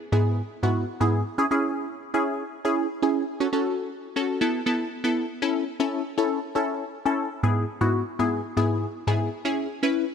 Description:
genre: pop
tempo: 119 BPM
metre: 4/4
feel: straight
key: A major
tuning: A4 = 440 Hz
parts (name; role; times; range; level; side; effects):
- punchy chord stab; solo; 0.1-10.0 s; G#2 to B4; -23 LUFS; equal; chorus, phaser
room: light reverb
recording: none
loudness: -23 LUFS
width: side -7 dB against mid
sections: 0.0-5.4 A section; 5.4-10.1 B section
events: none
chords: 0.0 E/G#; 1.4 C#m; 3.4 F#m; 4.4 Esus4; 5.4 A; 7.4 E/G#; 9.5 C#m

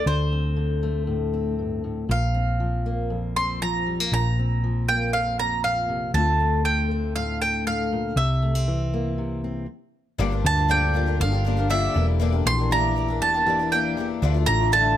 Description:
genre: indie folk with a building arrangement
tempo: 118 BPM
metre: 4/4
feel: straight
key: D minor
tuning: A4 = 440 Hz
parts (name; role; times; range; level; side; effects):
- mandolin; melody; 0.0-15.0 s; C5 to C6; -24 LUFS; right 3 dB; none
- fingerpicked steel-string acoustic guitar; accompaniment; 0.0-15.0 s; D2 to G4; -28 LUFS; left 3 dB; none
- hollow-body short-scale picked electric bass; bass; 0.0-15.0 s; E1 to D2; -24 LUFS; equal; none
- picked twelve-string acoustic guitar; accompaniment; 10.2-15.0 s; G2 to G4; -28 LUFS; left 9 dB; none
room: studio ambience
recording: none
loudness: -21 LUFS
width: side -11 dB against mid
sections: 0.0-10.2 A section; 10.2-15.0 B section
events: stop 9.7-10.2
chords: 0.0 Dm7; 2.1 Bbsus2; 6.1 Dm7; 8.2 C7; 10.2 Gm7; 12.0 Em7b5; 14.2 Dmadd9

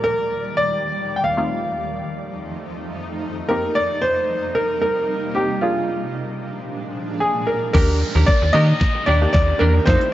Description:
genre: dance-pop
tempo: 113 BPM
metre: 4/4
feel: straight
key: Eb major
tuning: A4 = 437 Hz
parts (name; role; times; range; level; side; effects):
- clear concert grand piano; melody; 0.0-10.1 s; F4 to G5; -21 LUFS; equal; none
- wavetable chord stab; accompaniment; 0.0-10.1 s; A3 to Bb4; -28 LUFS; left 1 dB; sidechain pumping
- shimmering ambient pad; sustained chords; 0.0-10.1 s; Eb2 to D5; -28 LUFS; right 1 dB; chorus, built-in reverb, sidechain pumping
- twelve-string electric guitar; riff; 7.7-10.1 s; C4 to Bb4; -26 LUFS; right 4 dB; lush chorus
- slap-like FM bass; bass; 7.7-10.0 s; Eb2 to Eb3; -17 LUFS; equal; sidechain pumping
- pop drum kit; drums; 7.7-10.1 s; crash cymbal, hi-hat, kick drum, snare drum; -18 LUFS; equal; none
- riser and downlifter; sound effects; 7.7-10.1 s; none; -30 LUFS; right 1 dB; none
room: light reverb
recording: worn, warbling old tape, cassette tape, warbly pitch drift, nothing above 7.8 kHz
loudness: -17 LUFS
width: side -14 dB against mid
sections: 0.0-7.8 A section; 7.8-10.1 B section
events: build-up 7.8-10.1; drum fill 7.8-10.1; riser 7.8-10.1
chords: 0.0 Ebmaj7; 1.4 F7; 3.5 Cm7; 5.6 Bb7; 7.8 Ebmaj7

